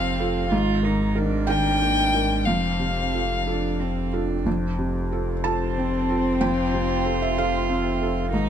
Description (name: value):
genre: neoclassical piano and strings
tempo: 62 BPM (dotted quarters)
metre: 6/8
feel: rubato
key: unclear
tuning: A4 = 440 Hz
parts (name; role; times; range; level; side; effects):
- dark violin; melody; 0.0-8.5 s; C4 to G5; -26 LUFS; left 6 dB; none
- warm cello; second line; 0.0-8.5 s; C4 to F4; -29 LUFS; right 7 dB; none
- felt-muted upright piano; accompaniment; 0.0-8.5 s; F2 to A5; -24 LUFS; right 2 dB; none
- saturated sub bass; bass; 0.0-8.5 s; F1 to Ab1; -28 LUFS; left 1 dB; none
room: light reverb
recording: close, detailed microphones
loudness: -21 LUFS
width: side -9 dB against mid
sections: 0.0-4.5 A section; 4.5-8.5 B section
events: none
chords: 0.0 F; 0.5 Absus2; 2.5 F